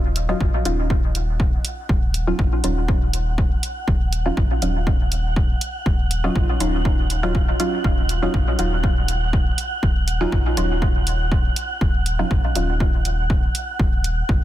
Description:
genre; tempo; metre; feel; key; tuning
dub techno; 121 BPM; 4/4; straight; Eb minor; A4 = 441 Hz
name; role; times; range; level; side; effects
warm sub bass; bass; 0.0-14.4 s; Eb1 to Gb1; -23 LUFS; equal; sidechain pumping
wind-like tuned noise texture; texture; 1.2-14.4 s; Gb5; -30 LUFS; right 2 dB; built-in reverb, sidechain pumping
electronic hi-hat; drums; 0.2-14.1 s; none; -27 LUFS; right 2 dB; none
filtered dub chord stab; stabs; 0.3-12.8 s; Gb3 to F4; -25 LUFS; equal; chorus, phaser, sidechain pumping, dub echo
electronic kick drum; drums; 0.4-14.4 s; none; -20 LUFS; equal; none
room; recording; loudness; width
little or no reverb; dense, heavily limited modern master; -18 LUFS; side -13 dB against mid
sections
0.0-14.4 A section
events
none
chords
0.0 Ebm9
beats
0.41 0.90 1.40 | 1.89 2.39 2.89 3.38 | 3.88 4.37 4.87 5.37 | 5.86 6.36 6.85 7.35 | 7.84 8.34 8.84 9.33 | 9.83 10.32 10.82 11.32 | 11.81 12.31 12.80 13.30 | 13.79 14.29

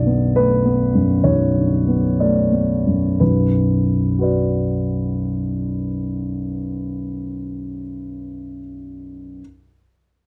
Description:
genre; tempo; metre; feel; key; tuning
neoclassical minimalist piano; 58-69 BPM; 4/4; rubato; B minor; A4 = 440 Hz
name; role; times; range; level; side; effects
dark grand piano; solo; 0.0-9.4 s; B1 to D5; -20 LUFS; equal; none
room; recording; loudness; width
little or no reverb; dry, close 1970s-style studio recording; -19 LUFS; mono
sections
0.0-3.2 A section; 3.2-7.1 B section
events
slowing down 0.0-3.2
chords
0.0 Bm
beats
0.34 1.23 2.20 | 3.21 4.19 5.16 6.14

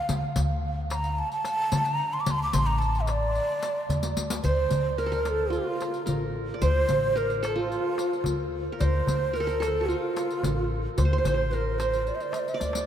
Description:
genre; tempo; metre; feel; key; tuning
Arabic maqam ensemble; 110 BPM; 4/4; straight; D maqam saba; A4 = 438 Hz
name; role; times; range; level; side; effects
breathy mellow ney; melody; 0.0-12.9 s; F4 to D6; -28 LUFS; right 1 dB; none
upright bass; bass; 0.1-12.9 s; A1 to D3; -29 LUFS; equal; none
darbuka; percussion; 0.1-12.9 s; none; -32 LUFS; left 2 dB; none
riq; percussion; 0.1-12.9 s; none; -38 LUFS; left 4 dB; none
qanun; second line; 4.4-12.9 s; F4 to D5; -32 LUFS; right 3 dB; none
room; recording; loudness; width
wet cathedral reverb, RT60 6.4 s; in a vast, echoing space; -24 LUFS; side -10 dB against mid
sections
0.0-4.4 A section; 4.4-12.9 B section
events
drum fill 3.9-4.4, 12.6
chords
none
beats
| 0.09 0.63 1.18 1.72 | 2.26 2.81 3.35 3.89 | 4.44 4.98 5.53 6.07 | 6.62 7.16 7.71 8.25 | 8.79 9.34 9.88 10.43 | 10.97 11.52 12.07 12.61

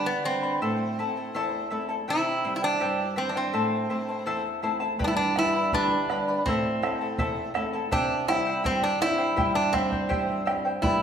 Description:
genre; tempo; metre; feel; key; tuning
andean folk, Andean ensemble; 82 BPM; 2/4; straight; unclear; A4 = 440 Hz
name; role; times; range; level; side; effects
metal-body resonator slide guitar; melody; 0.0-11.0 s; B3 to E4; -27 LUFS; right 1 dB; none
charango; accompaniment; 0.0-11.0 s; E4 to B5; -29 LUFS; left 2 dB; none
flamenco guitar; accompaniment; 0.0-11.0 s; E2 to B4; -31 LUFS; right 1 dB; none
bombo; percussion; 5.0-11.0 s; none; -32 LUFS; right 2 dB; none
room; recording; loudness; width
wet recital hall reverb, RT60 1.7 s; minimal, uncompressed stereo recording; -24 LUFS; side -8 dB against mid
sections
0.0-5.0 A section; 5.0-11.0 A section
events
none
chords
0.0 G; 0.6 Am; 2.1 C; 3.5 Am; 5.0 G; 6.5 Am; 7.9 C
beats
| 0.62 1.35 | 2.08 2.81 | 3.54 4.27 | 5.00 5.73 | 6.46 7.19 | 7.92 8.64 | 9.37 10.10 | 10.83

